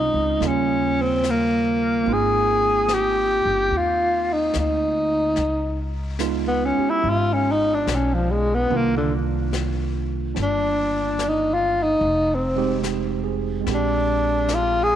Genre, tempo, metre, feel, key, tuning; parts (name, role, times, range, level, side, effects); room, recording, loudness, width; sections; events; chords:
jazz ballad; 73 BPM; 4/4; swing 69% on 8ths; A4 = 436 Hz
breathy tenor saxophone; melody; 0.0-15.0 s; D3 to Ab4; -20 LUFS; left 1 dB
barky tine electric piano; accompaniment; 0.0-15.0 s; Db3 to C5; -27 LUFS; right 15 dB
upright bass; bass; 0.0-15.0 s; F1 to Eb2; -27 LUFS; left 1 dB
jazz brush drum kit; drums; 0.4-15.0 s; brushed snare drum, hi-hat, snare drum; -35 LUFS; left 7 dB
moderate spring reverb, RT60 2.8 s; 1960s-style stereo with parts hard left and right; -19 LUFS; side -10 dB against mid
0.0-15.0 A section
tenor saxophone solo 0.0-15.0
0.4 Eb9; 2.1 Ab6; 5.4 Db9; 8.7 Cm11; 12.0 Fm7; 13.7 Bb13